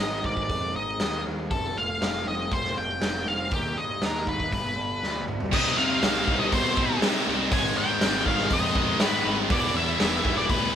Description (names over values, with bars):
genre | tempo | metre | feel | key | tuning
quiet-loud alternative rock | 120 BPM | 4/4 | straight | C harmonic minor from 5.5 s | A4 = 442 Hz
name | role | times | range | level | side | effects
octave-fuzz lead guitar | melody | 0.0-10.8 s | G4 to Ab5 | -28 LUFS | left 1 dB | distortion
electric guitar through a small old amp | arpeggios | 0.0-5.5 s | G2 to F4 | -36 LUFS | right 1 dB | phaser
fuzz picked electric bass | bass | 0.0-10.8 s | E1 to C3 | -33 LUFS | equal | overdrive
raw garage drum kit | drums | 0.2-10.6 s | crash cymbal, hi-hat, kick drum, snare drum, toms | -27 LUFS | equal | none
glassy FM pad | sustained chords | 6.4-10.8 s | G4 to C6 | -40 LUFS | left 2 dB | none
heavy high-gain guitar | riff | 5.5-10.7 s | E2 to C4 | -30 LUFS | left 1 dB | distortion
high-gain distorted guitar | riff | 5.5-10.8 s | Ab2 to E4 | -30 LUFS | right 9 dB | distortion
overdriven electric guitar | riff | 5.5-10.8 s | Ab2 to E4 | -30 LUFS | left 6 dB | none
room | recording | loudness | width
light reverb | band playing live in one room | -22 LUFS | side -9 dB against mid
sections
0.0-5.5 A section; 5.5-10.8 B section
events
drum fill 5.0-5.5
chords
0.0 Ab; 1.5 F; 3.5 Eb; 4.5 G7; 5.5 Cm; 7.5 Abm; 9.5 Em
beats
0.49 1.00 | 1.50 2.01 2.51 3.01 | 3.52 4.02 4.52 5.02 | 5.52 6.02 6.52 7.02 | 7.52 8.02 8.51 9.01 | 9.51 10.01 10.50